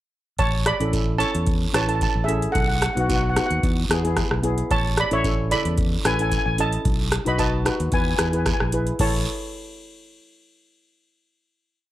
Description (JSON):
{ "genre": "calypso", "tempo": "112 BPM", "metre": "4/4", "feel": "swing 53% on 16ths", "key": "A major", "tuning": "A4 = 441 Hz", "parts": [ { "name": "steel pan", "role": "melody", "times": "0.4-9.3 s", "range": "G#4 to B5", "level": "-25 LUFS", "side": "right 1 dB", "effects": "slapback echo" }, { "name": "fingered electric bass", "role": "bass", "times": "0.4-9.2 s", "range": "A1 to E2", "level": "-25 LUFS", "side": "equal", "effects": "none" }, { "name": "booming analog drum machine", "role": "drums", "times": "0.4-9.1 s", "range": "crash cymbal, hi-hat, kick drum, rim click", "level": "-25 LUFS", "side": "equal", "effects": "none" }, { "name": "guiro", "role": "percussion", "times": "0.4-9.2 s", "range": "none", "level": "-34 LUFS", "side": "right 5 dB", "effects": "none" }, { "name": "steel pan", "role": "accompaniment", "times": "0.8-9.3 s", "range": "C#3 to C#5", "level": "-27 LUFS", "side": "equal", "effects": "none" } ], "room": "light reverb", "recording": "none", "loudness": "-19 LUFS", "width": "side -14 dB against mid", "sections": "0.4-9.0 chorus; 9.0-11.2 final chord", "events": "break 8.7", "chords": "0.4 Aadd9; 2.5 B; 3.6 E; 4.7 Aadd9; 6.9 B7; 7.9 E; 9.0 A" }